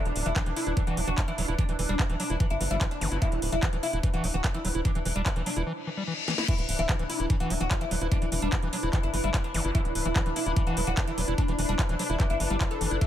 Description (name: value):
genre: psychedelic trance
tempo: 147 BPM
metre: 4/4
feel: straight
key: E minor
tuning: A4 = 440 Hz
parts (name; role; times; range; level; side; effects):
- pulsing gated texture; sustained chords; 0.0-13.1 s; D4; -38 LUFS; left 1 dB; chorus, built-in reverb, sidechain pumping
- oud; melody; 0.1-13.1 s; E3 to A4; -33 LUFS; left 1 dB; phaser, sidechain pumping, tape echo
- tight sequencer bass; bass; 0.1-13.0 s; D1 to G1; -30 LUFS; equal; tube saturation
- drum and bass drum kit; drums; 0.1-13.1 s; crash cymbal, handclaps, hi-hat, snare drum; -34 LUFS; equal; none
- overdriven acid bass; riff; 0.3-13.1 s; E3 to E4; -34 LUFS; moving between left 5 dB and right 5 dB; auto-pan, sidechain pumping, tape echo
- electronic kick drum; drums; 0.4-13.1 s; none; -26 LUFS; equal; none
- zap and reverse cymbal; sound effects; 3.0-3.1, 5.8-6.5, 9.5-9.6 s; none; -35 LUFS; left 4 dB; none
- warbly tape-like pad; texture; 7.0-13.1 s; E4 to B5; -37 LUFS; left 1 dB; chorus, built-in reverb, phaser, sidechain pumping
room: digital ambience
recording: none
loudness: -25 LUFS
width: side -11 dB against mid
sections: 0.0-6.5 A section; 6.5-13.1 B section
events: break 5.7-6.5; reverse cymbal 5.8-6.5; drum fill 6.3; drop 6.5-13.1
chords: 0.0 E5